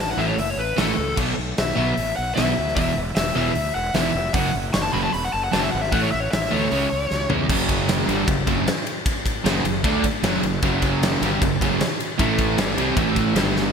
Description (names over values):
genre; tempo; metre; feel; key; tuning
hard rock; 152 BPM; 4/4; straight; F# minor; A4 = 439 Hz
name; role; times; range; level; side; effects
biting lead guitar; melody; 0.0-7.3 s; A4 to C#6; -25 LUFS; left 2 dB; overdrive
fuzz fingered electric bass; bass; 0.0-13.7 s; E1 to E2; -28 LUFS; equal; overdrive
crunchy overdriven guitar; riff; 0.2-13.7 s; E2 to D4; -25 LUFS; right 9 dB; none
overdriven semi-hollow guitar; riff; 0.2-13.7 s; E2 to D4; -27 LUFS; left 10 dB; lush chorus
big rock drum kit; drums; 0.2-13.6 s; crash cymbal, hi-hat, kick drum, ride cymbal, snare drum, toms; -24 LUFS; equal; gated reverb
distorted electric guitar; riff; 7.5-13.7 s; F#2 to D4; -28 LUFS; equal; distortion
room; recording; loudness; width
moderate lush hall reverb, RT60 2.1 s; bright 1980s-style digital production; -19 LUFS; side -6 dB against mid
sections
0.0-7.5 A section; 7.5-13.7 B section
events
lead electric guitar solo 0.0-7.5; drum fill 7.1-7.5, 13.6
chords
0.0 A; 1.2 B5; 2.8 E5; 4.3 F#5; 5.9 A5; 6.7 C#m; 7.5 F#m; 12.2 A5; 12.6 Gsus4; 13.0 A5